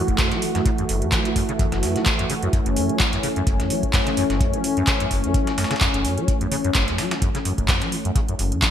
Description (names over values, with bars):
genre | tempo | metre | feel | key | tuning
acid house | 128 BPM | 4/4 | swing 55% on 16ths | F# minor | A4 = 440 Hz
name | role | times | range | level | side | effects
warm analog pad | sustained chords | 0.0-8.7 s | E3 to F#4 | -24 LUFS | equal | chorus, sidechain pumping
acid bass, saw | riff | 0.0-8.7 s | F#1 to F#3 | -26 LUFS | equal | overdrive, ensemble chorus, cassette tape, sidechain pumping, digital delay
booming analog drum machine | drums | 0.1-8.7 s | handclaps, hi-hat | -25 LUFS | equal | overdrive, gated reverb
electronic kick drum | drums | 0.1-8.7 s | none | -23 LUFS | equal | overdrive
dusty soul sampler-style drum kit | drums | 0.2-8.7 s | hi-hat, snare drum | -32 LUFS | equal | high-pass filter on hats, high-pass filter on snare, high-pass filter on room, gated reverb
room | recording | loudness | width
moderate lush hall reverb, RT60 1.6 s | bright 1980s-style digital production | -19 LUFS | side -9 dB against mid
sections
0.0-8.7 A section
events
none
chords
0.0 F#m7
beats
0.19 | 0.66 1.12 1.59 2.06 | 2.53 3.00 3.47 3.94 | 4.41 4.88 5.34 5.81 | 6.28 6.75 7.22 7.69 | 8.16 8.62